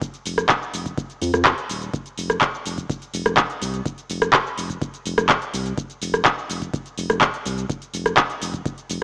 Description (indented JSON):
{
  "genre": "acid house",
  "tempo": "125 BPM",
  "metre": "4/4",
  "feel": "straight",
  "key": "unclear",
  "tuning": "A4 = 440 Hz",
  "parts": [
    { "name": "booming analog drum machine", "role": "drums", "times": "0.0-9.0 s", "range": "handclaps, hi-hat, rim click, shaker", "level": "-19 LUFS", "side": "equal", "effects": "none" },
    { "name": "electronic kick drum", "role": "drums", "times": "0.0-8.8 s", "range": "none", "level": "-28 LUFS", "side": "equal", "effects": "none" },
    { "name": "round analog bass", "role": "bass", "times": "0.3-9.0 s", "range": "Eb1 to F2", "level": "-27 LUFS", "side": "equal", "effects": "sidechain pumping" }
  ],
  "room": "moderate lush hall reverb, RT60 1.7 s",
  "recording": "small speaker sound",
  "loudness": "-20 LUFS",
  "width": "side -34 dB against mid",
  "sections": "0.0-9.0 A section",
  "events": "none",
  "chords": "none"
}